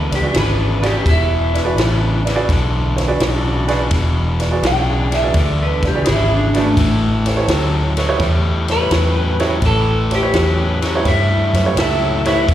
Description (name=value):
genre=electric blues shuffle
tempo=84 BPM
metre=4/4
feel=swing 68% on 8ths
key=unclear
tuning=A4 = 440 Hz
part: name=clean electric guitar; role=melody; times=0.0-12.5 s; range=A3 to G5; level=-20 LUFS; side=equal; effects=lush chorus, slapback echo
part: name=crunchy overdriven guitar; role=riff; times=0.0-12.5 s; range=E2 to G3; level=-21 LUFS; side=left 2 dB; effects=slapback echo
part: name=vintage muted fingered electric bass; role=bass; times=0.0-12.5 s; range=E1 to G2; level=-18 LUFS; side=equal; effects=none
part: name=warm upright piano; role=accompaniment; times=0.1-12.4 s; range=E4 to D5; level=-22 LUFS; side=right 4 dB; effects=slapback echo
part: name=compact cocktail drum kit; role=drums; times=0.1-12.5 s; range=kick drum, ride cymbal, snare drum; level=-22 LUFS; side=equal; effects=none
part: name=warm horn section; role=stabs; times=0.3-12.4 s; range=C#4 to G5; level=-26 LUFS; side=equal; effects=slapback echo
room=light reverb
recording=live gig heard through the venue's PA, recital hall reverb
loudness=-14 LUFS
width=side -12 dB against mid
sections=0.0-12.5 A section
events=clean electric guitar solo 0.0-12.5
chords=0.0 E7; 6.8 A7